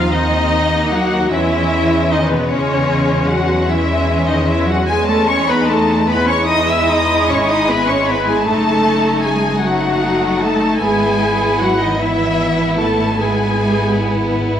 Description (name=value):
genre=classical, slow romantic movement for string orchestra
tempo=50 BPM (dotted quarters)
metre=12/8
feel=rubato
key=unclear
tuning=A4 = 440 Hz
part: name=warm symphonic violin section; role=melody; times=0.0-14.4 s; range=B4 to E6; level=-20 LUFS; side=left 3 dB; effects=none
part: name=rich chamber violin section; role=second line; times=0.0-14.6 s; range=G#3 to E4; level=-19 LUFS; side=left 2 dB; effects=none
part: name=rich chamber viola section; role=accompaniment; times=0.0-14.4 s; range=B3 to E5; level=-19 LUFS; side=right 1 dB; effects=none
part: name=clear chamber double bass section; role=bass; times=0.0-14.6 s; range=F#1 to E2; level=-22 LUFS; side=right 1 dB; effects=none
part: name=warm chamber cello section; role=bass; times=0.0-14.4 s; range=B2 to E4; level=-20 LUFS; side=right 1 dB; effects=none
room=wet scoring stage reverb, RT60 1.7 s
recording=vinyl crackle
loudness=-13 LUFS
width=side -9 dB against mid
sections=0.0-14.6 A section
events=none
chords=0.0 Cdim/Eb; 1.3 C#m/E; 6.1 E; 8.5 D#dim/F#; 10.8 E/G#